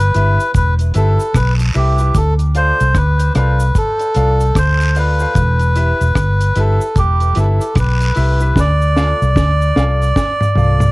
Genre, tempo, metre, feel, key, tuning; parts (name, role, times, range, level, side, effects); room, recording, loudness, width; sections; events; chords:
roots reggae; 75 BPM; 4/4; swing 62% on 16ths; D dorian; A4 = 440 Hz
melodica; melody; 0.0-10.9 s; G4 to D5; -17 LUFS; equal; tape echo
vintage muted fingered electric bass; bass; 0.0-10.9 s; E1 to D2; -13 LUFS; equal
cabasa and guiro; percussion; 0.0-10.9 s; -32 LUFS; right 2 dB
clear upright piano; stabs; 0.1-10.8 s; E4 to F5; -25 LUFS; left 2 dB; cassette tape
deep reggae drum kit; drums; 0.1-10.9 s; hi-hat, kick drum, rim click, snare drum, toms; -17 LUFS; equal; cassette tape
little or no reverb; home recording on cassette; -12 LUFS; side -22 dB against mid
0.0-10.9 A section
drum fill 8.6-10.9
0.0 Em; 2.1 Dm; 5.4 Em; 8.6 Dm